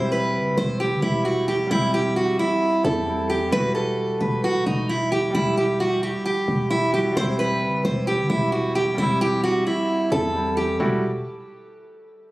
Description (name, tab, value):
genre	hip hop, trap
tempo	132 BPM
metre	4/4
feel	half-time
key	E minor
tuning	A4 = 440 Hz
part	picked steel-string acoustic guitar	melody	0.0-10.8 s	D#4 to C5	-22 LUFS	right 1 dB	none
part	warm concert grand piano	accompaniment	0.0-11.0 s	G3 to G4	-27 LUFS	equal	none
part	growling 808-style bass	bass	0.0-11.2 s	D#1 to E2	-27 LUFS	equal	none
room	studio reverb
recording	recorded on a phone in the room, club reverb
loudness	-20 LUFS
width	side -18 dB against mid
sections	0.0-10.8 A section; 10.8-12.3 B section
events	none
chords	0.0 C/E; 3.5 Emadd9; 7.2 C/E; 10.8 Emadd9